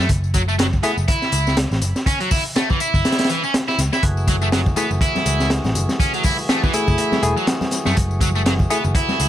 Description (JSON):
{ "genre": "breakbeat, breaks", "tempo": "122 BPM", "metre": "4/4", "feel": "swing 57% on 16ths", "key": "F# minor", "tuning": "A4 = 439 Hz", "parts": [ { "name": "sludgy distorted guitar", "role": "riff", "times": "0.0-9.3 s", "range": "E3 to E4", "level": "-22 LUFS", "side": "right 1 dB", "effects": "overdrive, vintage 12-bit sampler grit, low-pass filter, tape echo" }, { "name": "picked electric bass", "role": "bass", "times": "0.0-9.3 s", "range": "E1 to F#2", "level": "-20 LUFS", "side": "equal", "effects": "none" }, { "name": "crunchy breakbeat drum kit", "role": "drums", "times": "0.1-9.3 s", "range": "hi-hat, kick drum, snare drum", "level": "-20 LUFS", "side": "equal", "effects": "none" }, { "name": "tambourine", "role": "drums", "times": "0.1-9.3 s", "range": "none", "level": "-32 LUFS", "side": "left 9 dB", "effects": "none" }, { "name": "overdriven tine electric piano", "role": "stabs", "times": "0.8-0.9, 4.8-8.8 s", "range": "A3 to G#4", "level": "-25 LUFS", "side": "left 2 dB", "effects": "vintage 12-bit sampler grit, tape echo" }, { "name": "percussive tonewheel organ", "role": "sustained chords", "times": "4.0-9.3 s", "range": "E3 to G#4", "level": "-28 LUFS", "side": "right 1 dB", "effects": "overdrive, sidechain pumping" }, { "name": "congas", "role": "percussion", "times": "4.3-9.2 s", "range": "none", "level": "-30 LUFS", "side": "left 2 dB", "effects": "none" } ], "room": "studio reverb", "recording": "vinyl crackle", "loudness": "-16 LUFS", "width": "side -12 dB against mid", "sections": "0.0-9.3 A section", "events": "none", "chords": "0.0 F#m9" }